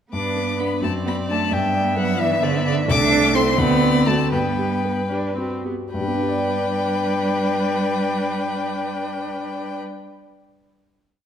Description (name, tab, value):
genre	quick classical-period movement for piano quintet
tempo	72-89 BPM (dotted quarters)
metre	6/8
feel	straight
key	G major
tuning	A4 = 440 Hz
part	rich violin	melody	0.1-9.8 s	D5 to D6	-24 LUFS	left 5 dB	none
part	clear violin	second line	0.1-9.8 s	B4 to E5	-28 LUFS	left 2 dB	none
part	warm cello	second line	0.1-9.8 s	D3 to D4	-24 LUFS	right 4 dB	none
part	rich viola	accompaniment	0.1-9.8 s	A3 to D4	-27 LUFS	right 3 dB	none
part	warm concert grand piano	accompaniment	0.1-10.2 s	C2 to D5	-25 LUFS	left 2 dB	none
room	wet recital hall reverb, RT60 1.5 s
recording	none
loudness	-18 LUFS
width	side -8 dB against mid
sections	0.1-5.9 A section; 5.9-9.2 final chord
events	slowing down 2.2-5.9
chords	0.1 G; 0.8 D7/F#; 1.5 G; 2.9 Am/C; 3.6 D7; 4.3 G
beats	| 0.14 0.83 | 1.52 2.20 | 2.88 3.58 | 4.32 5.11 | 5.93 6.76 | 7.58 8.41